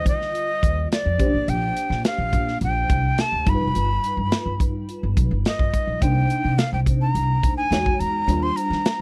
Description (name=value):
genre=polished 1980s jazz-funk pop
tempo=106 BPM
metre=4/4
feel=straight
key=Bb major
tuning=A4 = 437 Hz
part: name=breathy mellow jazz flute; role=melody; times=0.0-9.0 s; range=D5 to C6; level=-27 LUFS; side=equal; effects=none
part: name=bell-like FM electric piano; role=accompaniment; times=0.0-9.0 s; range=D3 to C#5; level=-31 LUFS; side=equal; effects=ensemble chorus
part: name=upright bass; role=bass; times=0.0-8.8 s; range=F1 to Eb3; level=-26 LUFS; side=equal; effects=none
part: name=modern studio drum kit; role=drums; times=0.1-9.0 s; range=hi-hat, kick drum, snare drum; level=-25 LUFS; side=equal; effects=none
room=light reverb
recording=dry, close 1970s-style studio recording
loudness=-22 LUFS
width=mono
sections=0.0-9.0 A section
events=none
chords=0.0 Ebmaj13; 1.2 Bb69; 3.5 G7b13; 6.0 Cm9; 7.7 Emaj13; 8.3 Ebmaj13